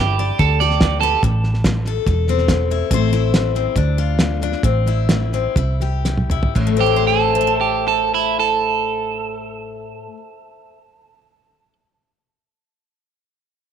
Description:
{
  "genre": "honky-tonk and classic country",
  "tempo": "114-143 BPM",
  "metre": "4/4",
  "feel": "straight",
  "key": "A minor",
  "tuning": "A4 = 440 Hz",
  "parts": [
    { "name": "electric guitar at the edge of break-up", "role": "second line", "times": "0.0-1.2, 6.8-11.7 s", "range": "E4 to D5", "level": "-18 LUFS", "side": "right 9 dB", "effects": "tape echo" },
    { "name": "picked steel-string acoustic guitar", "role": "accompaniment", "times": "0.0-10.8 s", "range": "A2 to A5", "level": "-22 LUFS", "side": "left 10 dB", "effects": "none" },
    { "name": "hollow-body short-scale fingered electric bass", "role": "bass", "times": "0.0-9.9 s", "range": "E1 to D2", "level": "-19 LUFS", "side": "right 1 dB", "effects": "none" },
    { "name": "cloth-damped thuddy drum kit", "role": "drums", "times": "0.2-8.0 s", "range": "crash cymbal, hi-hat, kick drum, rim click, snare drum, toms", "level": "-20 LUFS", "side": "right 1 dB", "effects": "none" }
  ],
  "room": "moderate spring reverb, RT60 2.0 s",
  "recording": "1960s-style stereo with parts hard left and right",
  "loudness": "-15 LUFS",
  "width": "side -8 dB against mid",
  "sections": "0.0-2.9 A section; 2.9-6.6 B section; 6.6-10.7 C section",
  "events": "slowing down 2.9-6.6; drum fill 6.0-6.6",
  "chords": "0.0 G; 1.2 Am; 3.8 Dm; 4.6 Am; 5.6 C; 6.6 Am"
}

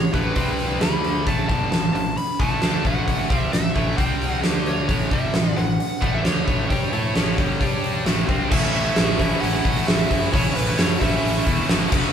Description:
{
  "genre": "classic rock",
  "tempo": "132 BPM",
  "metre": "4/4",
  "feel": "straight",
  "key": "A major",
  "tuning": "A4 = 440 Hz",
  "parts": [
    { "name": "biting lead guitar", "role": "melody", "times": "0.0-11.4 s", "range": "B4 to B5", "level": "-27 LUFS", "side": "equal", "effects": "overdrive" },
    { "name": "tight distorted guitar", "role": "riff", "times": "0.0-12.1 s", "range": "F#2 to A4", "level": "-24 LUFS", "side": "equal", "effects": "distortion" },
    { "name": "fuzz fingered electric bass", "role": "bass", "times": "0.0-12.1 s", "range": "F#1 to A2", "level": "-28 LUFS", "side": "equal", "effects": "overdrive" },
    { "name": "huge arena drum kit", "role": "drums", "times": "0.1-12.0 s", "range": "crash cymbal, hi-hat, kick drum, snare drum", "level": "-21 LUFS", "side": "equal", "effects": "none" }
  ],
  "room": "light reverb",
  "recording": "band playing live in one room",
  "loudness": "-18 LUFS",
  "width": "side -8 dB against mid",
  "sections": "0.0-8.5 A section; 8.5-12.1 B section",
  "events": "none",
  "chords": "0.4 C5; 0.8 D5; 1.3 A5; 4.0 C5; 4.4 D5; 4.9 A; 7.6 G5; 8.1 A5; 8.5 A"
}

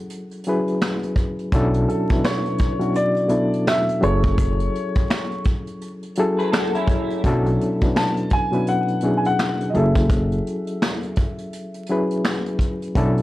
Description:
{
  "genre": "lo-fi hip hop",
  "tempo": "84 BPM",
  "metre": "4/4",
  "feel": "swing 61% on 16ths",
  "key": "F# minor",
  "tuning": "A4 = 442 Hz",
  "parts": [
    { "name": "barky reed electric piano", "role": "accompaniment", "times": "0.0-13.2 s", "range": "B2 to B4", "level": "-22 LUFS", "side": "left 1 dB", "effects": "fast tremolo, cassette tape, low-pass filter" },
    { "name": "vintage brush drum kit", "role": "drums", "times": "0.1-13.2 s", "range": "finger snaps, hi-hat, kick drum, snare drum", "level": "-22 LUFS", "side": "equal", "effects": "none" },
    { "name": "upright bass", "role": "bass", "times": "1.5-13.2 s", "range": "F#1 to B1", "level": "-21 LUFS", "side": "equal", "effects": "tube saturation" },
    { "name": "warm upright piano", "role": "melody", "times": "1.9-12.6 s", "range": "A4 to A5", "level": "-25 LUFS", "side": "left 1 dB", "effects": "low-pass filter" },
    { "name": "electric guitar through a small old amp", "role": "second line", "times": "6.4-7.2 s", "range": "C#4 to B4", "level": "-26 LUFS", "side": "equal", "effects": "analog chorus, low-pass filter, analog delay" }
  ],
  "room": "little or no reverb",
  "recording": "dry, gritty hardware recording, vinyl crackle",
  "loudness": "-18 LUFS",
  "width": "side -16 dB against mid",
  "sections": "0.0-13.2 A section",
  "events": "none",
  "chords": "0.0 F#m9; 1.5 Bm11; 4.0 F#m9; 7.2 Bm11; 9.7 F#m9"
}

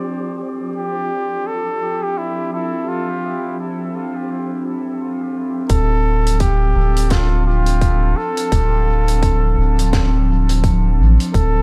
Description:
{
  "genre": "ambient dub",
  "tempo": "85 BPM",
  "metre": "4/4",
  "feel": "swing 59% on 16ths",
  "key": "D minor",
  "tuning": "A4 = 444 Hz",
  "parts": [
    { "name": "warbly tape-like pad", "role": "sustained chords", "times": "0.0-11.6 s", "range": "F3 to A5", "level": "-27 LUFS", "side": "equal", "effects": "chorus, built-in reverb" },
    { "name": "wind-like tuned noise texture", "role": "texture", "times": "0.0-5.7 s", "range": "F3 to G4", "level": "-34 LUFS", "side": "equal", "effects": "built-in reverb" },
    { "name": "trumpet with bucket mute", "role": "melody", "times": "0.8-11.6 s", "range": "E4 to A4", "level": "-25 LUFS", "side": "equal", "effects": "dub echo" },
    { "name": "soft dub sub bass", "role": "bass", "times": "5.7-11.6 s", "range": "D1 to A1", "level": "-18 LUFS", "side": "equal", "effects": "none" },
    { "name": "electronic kick drum", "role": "drums", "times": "5.7-11.5 s", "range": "none", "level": "-22 LUFS", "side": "equal", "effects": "none" },
    { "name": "vintage drum kit", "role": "drums", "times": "5.7-11.5 s", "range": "hi-hat, snare drum", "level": "-29 LUFS", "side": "equal", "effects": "none" }
  ],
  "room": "light reverb, small room ambience",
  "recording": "none",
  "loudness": "-18 LUFS",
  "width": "mono",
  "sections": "0.0-5.7 A section; 5.7-11.6 B section",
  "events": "none",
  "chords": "0.0 Dm7"
}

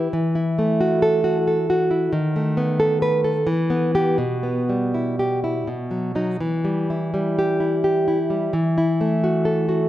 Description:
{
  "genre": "romantic piece for solo classical guitar",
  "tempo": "79-93 BPM",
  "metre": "3/4",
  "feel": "rubato",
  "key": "E minor",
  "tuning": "A4 = 437 Hz",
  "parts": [
    { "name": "nylon-string guitar", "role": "solo", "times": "0.0-9.9 s", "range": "B2 to B4", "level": "-18 LUFS", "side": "equal", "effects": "none" }
  ],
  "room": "moderate scoring stage reverb, RT60 1.9 s",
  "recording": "none",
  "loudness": "-18 LUFS",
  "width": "side -13 dB against mid",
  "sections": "0.0-9.9 A section",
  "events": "none",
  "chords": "0.1 Esus24; 2.1 B7/D#; 3.5 Em; 4.2 Em/B; 5.7 B; 6.4 Em; 8.5 Esus24"
}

